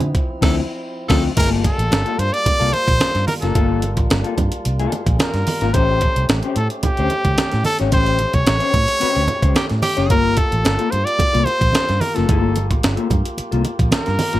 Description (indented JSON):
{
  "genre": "funk",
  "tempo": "110 BPM",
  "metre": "4/4",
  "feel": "straight",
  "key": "unclear",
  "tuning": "A4 = 439 Hz",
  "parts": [
    { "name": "mellow electric guitar", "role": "accompaniment", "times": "0.0-14.4 s", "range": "F3 to C#5", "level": "-24 LUFS", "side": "left 7 dB", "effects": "spring reverb" },
    { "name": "tonewheel organ", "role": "sustained chords", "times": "0.0-14.4 s", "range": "F3 to G4", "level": "-31 LUFS", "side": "right 2 dB", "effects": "overdrive, stopped rotary speaker" },
    { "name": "vintage muted fingered electric bass", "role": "bass", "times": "0.0-14.4 s", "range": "F#1 to D3", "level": "-20 LUFS", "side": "equal", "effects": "none" },
    { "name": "breakbeat sampler-style drum kit", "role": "drums", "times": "0.0-14.4 s", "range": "crash cymbal, hi-hat, kick drum, snare drum", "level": "-20 LUFS", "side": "right 1 dB", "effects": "none" },
    { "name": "congas", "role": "percussion", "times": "0.0-14.3 s", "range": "none", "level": "-26 LUFS", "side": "right 3 dB", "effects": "none" },
    { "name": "edgy tenor saxophone", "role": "second line", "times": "0.4-1.2, 9.6-10.2 s", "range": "G4 to A4", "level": "-23 LUFS", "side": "right 2 dB", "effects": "none" },
    { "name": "clear trumpet", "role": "melody", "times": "1.4-14.4 s", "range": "G4 to D5", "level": "-20 LUFS", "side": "equal", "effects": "none" }
  ],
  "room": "little or no reverb",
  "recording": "none",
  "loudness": "-15 LUFS",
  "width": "side -15 dB against mid",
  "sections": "0.0-1.4 A section; 1.4-14.4 B section",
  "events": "band accent 0.3-1.4, 7.9-10.1",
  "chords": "0.0 Dm9; 1.4 Gm9; 5.7 A7#9; 10.1 Gm9"
}